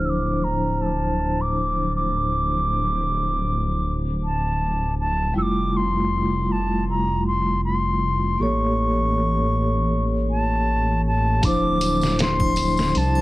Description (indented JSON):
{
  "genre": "trip hop",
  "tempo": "79 BPM",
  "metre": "4/4",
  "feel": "swing 55% on 16ths",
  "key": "D minor",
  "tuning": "A4 = 440 Hz",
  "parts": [
    { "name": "mellow wooden flute", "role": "melody", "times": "0.0-13.2 s", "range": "A5 to E6", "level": "-24 LUFS", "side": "equal", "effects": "tape echo" },
    { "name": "vibraphone with soft mallets", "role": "accompaniment", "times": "0.0-13.2 s", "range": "F3 to C#5", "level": "-25 LUFS", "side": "equal", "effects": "tremolo, low-pass filter, tape echo" },
    { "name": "dark detuned saw bass", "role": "bass", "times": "0.0-13.2 s", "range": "D1 to C2", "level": "-24 LUFS", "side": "equal", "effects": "none" },
    { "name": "trip hop sampler-style drum kit", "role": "drums", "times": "11.4-13.1 s", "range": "hi-hat, kick drum, snare drum", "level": "-24 LUFS", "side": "equal", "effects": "vintage 12-bit sampler grit" },
    { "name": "tambourine and triangle", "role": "percussion", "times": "11.4-13.2 s", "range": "none", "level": "-34 LUFS", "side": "left 3 dB", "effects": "none" }
  ],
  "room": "small room ambience",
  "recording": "heavily compressed radio sound, multiband compression, low-pass filter",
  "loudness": "-19 LUFS",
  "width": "side -18 dB against mid",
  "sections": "0.0-11.4 A section; 11.4-13.2 B section",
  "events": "filter sweep on vibraphone 0.0-11.4; filter sweep 0.0-11.4",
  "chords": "0.0 Dm9; 5.4 Fmaj9; 8.4 A7b9; 11.4 Dm9"
}